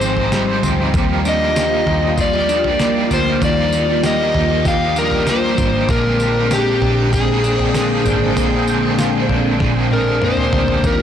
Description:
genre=dream pop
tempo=97 BPM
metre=4/4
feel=straight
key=unclear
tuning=A4 = 441 Hz
part: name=overdriven slide guitar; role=melody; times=0.0-11.0 s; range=G4 to F5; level=-19 LUFS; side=left 1 dB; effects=tape echo
part: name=overdriven electric guitar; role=accompaniment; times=0.0-11.0 s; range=Eb3 to D5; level=-23 LUFS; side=right 3 dB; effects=tremolo, lush chorus
part: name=phased string machine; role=sustained chords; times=0.0-11.0 s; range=D3 to G5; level=-21 LUFS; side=right 1 dB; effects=ensemble chorus, phaser
part: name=clean electric guitar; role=arpeggios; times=0.0-11.0 s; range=Ab2 to G4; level=-21 LUFS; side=left 3 dB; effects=wide subtle chorus, tape echo
part: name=vintage muted picked electric bass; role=bass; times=0.0-11.0 s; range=Ab1 to Eb2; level=-23 LUFS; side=right 1 dB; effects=tube saturation
part: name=detuned 8-bit digital drum machine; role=drums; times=0.0-11.0 s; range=kick drum, snare drum, tambourine, toms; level=-22 LUFS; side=right 1 dB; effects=overdrive
room=moderate shimmer reverb, RT60 5.1 s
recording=blown-out, overdriven recording, overdrive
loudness=-14 LUFS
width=side -9 dB against mid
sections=0.0-10.8 A section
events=drum fill 9.6-10.8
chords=0.0 Abmaj7; 0.9 Ebmaj9; 5.9 Bb13

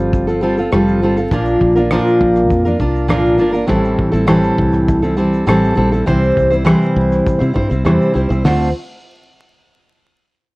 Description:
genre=acoustic pop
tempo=101 BPM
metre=4/4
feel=straight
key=D minor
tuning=A4 = 442 Hz
part: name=fingerpicked steel-string acoustic guitar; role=accompaniment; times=0.0-8.7 s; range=A2 to C5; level=-13 LUFS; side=equal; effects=none
part: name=fingered electric bass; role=bass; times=0.0-8.7 s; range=F1 to C3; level=-19 LUFS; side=equal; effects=none
part: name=cloth-damped thuddy drum kit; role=drums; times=0.1-8.6 s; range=hi-hat, kick drum, rim click, shaker, snare drum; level=-20 LUFS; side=equal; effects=vintage 12-bit sampler grit
room=moderate studio reverb, RT60 0.6 s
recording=worn, warbling old tape, cassette tape, vinyl crackle, warbly pitch drift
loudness=-12 LUFS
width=side -23 dB against mid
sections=0.0-8.4 A section; 8.4-10.6 B section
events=none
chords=0.0 Fadd9; 1.3 Bb; 3.7 Am7; 6.1 C; 8.4 Dm7

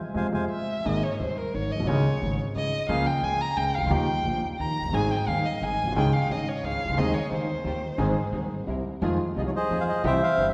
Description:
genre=tango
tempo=176 BPM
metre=3/4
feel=rubato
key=Ab major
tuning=A4 = 441 Hz
part: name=warm concert grand piano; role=accompaniment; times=0.1-10.5 s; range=Eb1 to Ab4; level=-30 LUFS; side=equal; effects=none
part: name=upright bass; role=bass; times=0.1-10.5 s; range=F1 to F2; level=-34 LUFS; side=equal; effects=none
part: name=bandoneon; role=melody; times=0.2-0.5, 9.4-10.5 s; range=Ab4 to Ab5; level=-28 LUFS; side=equal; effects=none
part: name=warm violin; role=second line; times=0.5-8.6 s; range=Bb4 to Bb5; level=-31 LUFS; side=equal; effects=none
part: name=dark studio string section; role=stabs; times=4.9-10.5 s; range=C4 to Bb4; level=-40 LUFS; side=equal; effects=none
room=wet concert hall reverb, RT60 2.1 s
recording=recorded in a church or concert hall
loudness=-26 LUFS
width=mono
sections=0.9-9.0 A section; 9.0-10.5 B section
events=band accent 0.0-0.9; violin solo 0.9-9.0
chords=0.0 Fm; 0.9 Absus2; 1.9 Dbsus2; 2.9 Bbm7/Db; 3.9 Ebadd9; 4.9 Ab; 6.0 Dbsus2; 7.0 Ab/Eb; 7.7 Ebadd9; 8.0 Ab; 8.7 C7; 9.0 Fm7

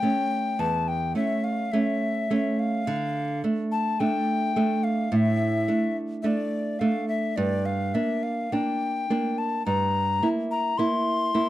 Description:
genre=romantic duo for recorder and classical guitar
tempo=53 BPM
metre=4/4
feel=rubato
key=D minor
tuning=A4 = 440 Hz
part: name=mellow hollow tenor recorder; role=melody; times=0.0-11.5 s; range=D5 to C6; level=-27 LUFS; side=left 4 dB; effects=none
part: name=nylon-string guitar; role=accompaniment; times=0.0-11.5 s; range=E2 to E4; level=-25 LUFS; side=right 2 dB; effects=none
room=studio reverb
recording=dry, close 1970s-style studio recording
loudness=-23 LUFS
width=side -14 dB against mid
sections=0.0-11.5 A section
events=none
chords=0.0 A; 2.9 D5; 7.4 Gm; 9.7 Edim/G

